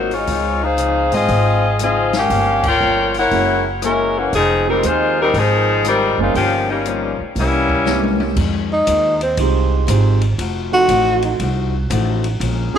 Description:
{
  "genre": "jazz, big band swing",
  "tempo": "119 BPM",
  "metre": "4/4",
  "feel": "swing 66% on 8ths",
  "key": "F minor",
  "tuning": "A4 = 440 Hz",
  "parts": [
    { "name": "mellow saxophone section", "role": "melody", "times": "0.0-8.2 s", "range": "Fb3 to G5", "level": "-16 LUFS", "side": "left 2 dB", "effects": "tape echo" },
    { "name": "picked acoustic archtop guitar", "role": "accompaniment", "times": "0.0-12.8 s", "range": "F2 to Ab4", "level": "-27 LUFS", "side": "left 9 dB", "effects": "none" },
    { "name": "upright bass", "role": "bass", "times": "0.0-12.8 s", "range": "F1 to Ab2", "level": "-20 LUFS", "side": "right 2 dB", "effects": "none" },
    { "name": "open jazz drum kit", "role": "drums", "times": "0.1-12.6 s", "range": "crash cymbal, hi-hat, kick drum, ride cymbal, rim click, snare drum, toms", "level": "-26 LUFS", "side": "left 5 dB", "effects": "none" },
    { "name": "warm grand piano", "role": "accompaniment", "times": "3.3-12.8 s", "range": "F3 to Bb4", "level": "-23 LUFS", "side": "right 14 dB", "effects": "none" },
    { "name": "breathy tenor saxophone", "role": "melody", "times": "8.7-12.8 s", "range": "C4 to Gb4", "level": "-16 LUFS", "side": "equal", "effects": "none" }
  ],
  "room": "moderate plate reverb, RT60 1.6 s, studio reverb",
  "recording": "1960s-style stereo with parts hard left and right",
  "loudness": "-14 LUFS",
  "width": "side -8 dB against mid",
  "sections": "0.0-8.4 A section; 8.4-12.8 B section",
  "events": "band accent 2.6; drum fill 7.9-8.4; tenor saxophone solo 8.4-12.8",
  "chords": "0.3 Dbmaj9; 2.3 Gm7b5; 3.3 Gb9; 4.3 Fm7; 6.3 Gm7b5; 7.4 C7b9; 8.4 Fm7; 10.4 F7b9",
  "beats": "| 0.28 0.79 1.29 1.80 | 2.30 2.81 3.31 3.82 | 4.33 4.83 5.34 5.84 | 6.35 6.85 7.36 7.86 | 8.37 8.87 9.38 9.88 | 10.38 10.89 11.39 11.90 | 12.40"
}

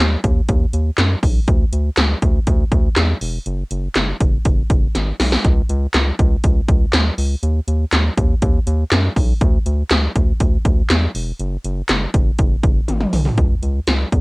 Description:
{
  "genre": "synth-pop",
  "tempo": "121 BPM",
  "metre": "4/4",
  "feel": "straight",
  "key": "unclear",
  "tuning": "A4 = 441 Hz",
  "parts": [
    { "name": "round analog bass", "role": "bass", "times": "0.0-14.2 s", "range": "E1 to F#2", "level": "-18 LUFS", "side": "equal", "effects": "none" },
    { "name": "80s electronic pad drums", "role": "drums", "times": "0.2-14.2 s", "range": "handclaps, hi-hat, kick drum, snare drum, toms", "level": "-16 LUFS", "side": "equal", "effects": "gated reverb on snare and toms" }
  ],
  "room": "light reverb",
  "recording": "home recording on cassette",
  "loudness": "-15 LUFS",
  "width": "side -25 dB against mid",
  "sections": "0.0-13.4 A section",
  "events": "drum fill 4.9-5.4, 12.9-13.4",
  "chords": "none",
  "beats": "0.49 0.98 | 1.48 1.97 2.47 2.97 | 3.46 3.96 4.45 4.95 | 5.45 5.94 6.44 6.93 | 7.43 7.92 8.42 8.92 | 9.41 9.91 10.40 10.90 | 11.40 11.89 12.39 12.88 | 13.38 13.88"
}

